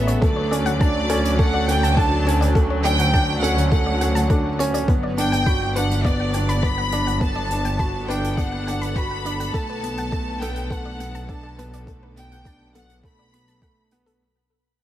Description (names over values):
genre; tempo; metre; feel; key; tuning
piano and strings electronica; 103 BPM; 4/4; straight; B minor; A4 = 440 Hz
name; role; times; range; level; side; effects
warm studio violin section; melody; 0.0-13.9 s; D5 to B5; -26 LUFS; equal; tape echo
clear studio string section; sustained chords; 0.0-14.2 s; C#3 to D5; -31 LUFS; equal; none
felt-muted upright piano; riff; 0.0-14.2 s; A3 to F#4; -26 LUFS; right 1 dB; tape echo
bright studio double bass section; bass; 0.0-14.2 s; G1 to D2; -24 LUFS; equal; sidechain pumping
soft round pluck; arpeggios; 0.1-14.1 s; A4 to B5; -32 LUFS; left 2 dB; chorus, sidechain pumping, tape echo
hi-hat; drums; 0.1-14.2 s; none; -35 LUFS; right 6 dB; none
electronic kick drum; drums; 0.2-13.7 s; none; -21 LUFS; equal; none
room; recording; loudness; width
light reverb, studio ambience; none; -18 LUFS; side -12 dB against mid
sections
0.0-14.2 A section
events
drop 0.0-14.2; fade-out 4.9-14.2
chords
0.2 Dmaj7; 4.9 Gmaj7; 9.5 Bm7